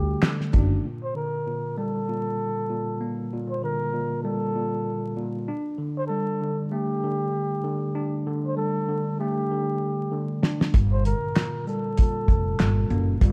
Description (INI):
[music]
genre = hip hop, boom-bap hip-hop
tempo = 97 BPM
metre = 4/4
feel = swing 58% on 16ths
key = G minor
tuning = A4 = 445 Hz
[part]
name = trumpet with bucket mute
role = melody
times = 0.0-13.2 s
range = G4 to C5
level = -32 LUFS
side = equal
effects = high-pass filter, low-pass filter
[part]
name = mellow tine electric piano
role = accompaniment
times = 0.0-13.3 s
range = Bb2 to D4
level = -30 LUFS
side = equal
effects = high-pass filter, low-pass filter
[part]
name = upright bass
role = bass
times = 0.0-0.8, 10.7-13.3 s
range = F1 to D2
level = -26 LUFS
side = equal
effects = none
[part]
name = cloth-damped thuddy drum kit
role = drums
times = 0.2-0.7, 10.4-13.3 s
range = handclaps, hi-hat, kick drum, shaker, snare drum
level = -23 LUFS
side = equal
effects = none
[sound]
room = light reverb, small room ambience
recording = dark, warm production, vinyl crackle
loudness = -26 LUFS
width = mono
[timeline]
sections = 0.8-13.3 A section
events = drum fill 10.1-10.7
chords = 0.0 Dsus4; 0.8 Gmadd9; 5.5 Dsus4; 10.7 Gmadd9